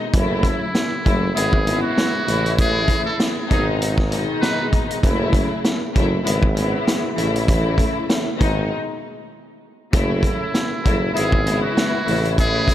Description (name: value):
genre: hip hop, boom-bap hip-hop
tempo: 98 BPM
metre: 4/4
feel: swing 56% on 16ths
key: unclear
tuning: A4 = 444 Hz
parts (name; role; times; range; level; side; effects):
- warm studio string section; accompaniment; 0.0-12.7 s; B2 to E4; -22 LUFS; left 2 dB; high-pass filter, low-pass filter
- warm tuba; bass; 0.1-12.7 s; F#1 to A1; -22 LUFS; equal; none
- vintage drum kit; drums; 0.1-12.7 s; hi-hat, kick drum, snare drum; -21 LUFS; equal; none
- trumpet with metal mute; melody; 0.4-4.7, 10.2-12.7 s; E4 to B4; -25 LUFS; right 1 dB; high-pass filter, low-pass filter, diffuse ambient delay
room: light reverb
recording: none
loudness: -17 LUFS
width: side -12 dB against mid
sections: 0.1-12.7 A section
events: break 8.7-9.9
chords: 0.1 F#m7; 1.4 C#m7/G#; 2.3 A; 3.5 G#m; 5.0 F#m7; 6.3 C#m7/G#; 7.2 A; 8.4 G#m; 9.9 F#m7; 11.2 C#m7/G#; 12.1 A